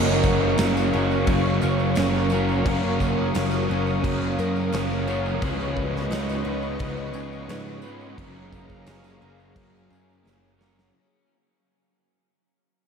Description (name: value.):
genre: rock, shoegaze and dream pop.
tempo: 87 BPM.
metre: 4/4.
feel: straight.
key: F# major.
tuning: A4 = 440 Hz.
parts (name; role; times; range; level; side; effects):
warm analog pad; sustained chords; 0.0-10.9 s; G#4 to D#6; -30 LUFS; left 1 dB; chorus.
picked twelve-string acoustic guitar; arpeggios; 0.0-10.9 s; A#3 to A#4; -34 LUFS; left 4 dB; analog chorus, tape echo.
crunchy overdriven guitar; riff; 0.0-10.9 s; C#3 to B4; -29 LUFS; right 8 dB; reverse reverb.
overdriven electric guitar; riff; 0.0-10.9 s; C#3 to B4; -30 LUFS; equal; lush chorus.
thick fuzz guitar; riff; 0.0-11.3 s; F#2 to C#4; -29 LUFS; left 6 dB; distortion, lush chorus.
picked electric bass; bass; 0.0-10.9 s; F#1 to G#2; -28 LUFS; equal; none.
tambourine; percussion; 0.1-10.9 s; none; -48 LUFS; right 13 dB; none.
gated 80s drum kit; drums; 0.2-10.9 s; crash cymbal, kick drum, snare drum; -30 LUFS; right 1 dB; none.
room: wet huge ambient reverb, RT60 7.5 s.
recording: dreamy mix soaked in reverb.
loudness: -21 LUFS.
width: side -6 dB against mid.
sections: 0.0-10.9 A section.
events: fade-out 0.0-10.9; drum fill 10.2-10.9.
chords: 0.0 F#maj7; 5.4 C#sus2; 8.2 F#maj9.